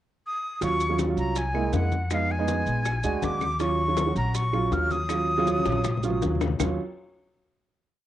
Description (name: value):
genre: Afro-Cuban jazz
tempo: 160 BPM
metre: 4/4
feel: straight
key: Eb minor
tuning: A4 = 439 Hz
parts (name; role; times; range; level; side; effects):
- breathy bright jazz flute; melody; 0.3-6.2 s; F5 to F6; -28 LUFS; left 1 dB; cassette tape
- warm baby grand piano; accompaniment; 0.6-6.8 s; Gb3 to Gb4; -28 LUFS; right 5 dB; cassette tape
- upright bass; bass; 0.6-6.8 s; Bb1 to F2; -28 LUFS; left 1 dB; none
- bongos; percussion; 0.6-6.7 s; none; -35 LUFS; left 9 dB; none
- congas; percussion; 0.6-6.7 s; none; -36 LUFS; left 8 dB; none
- maracas; percussion; 0.6-6.7 s; none; -40 LUFS; right 6 dB; none
- claves; percussion; 1.0-6.7 s; none; -44 LUFS; right 7 dB; none
room: moderate spring reverb, RT60 1.2 s, small room ambience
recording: home recording on cassette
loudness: -23 LUFS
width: side -12 dB against mid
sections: 0.0-0.6 pickup bar; 0.6-6.6 A section; 6.6-8.1 final chord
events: drum fill 5.5-6.6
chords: 0.0 N.C.; 0.6 Ebm9; 1.4 Caug7; 2.1 Fm7b5; 2.9 Bb7b13; 3.6 Ebm9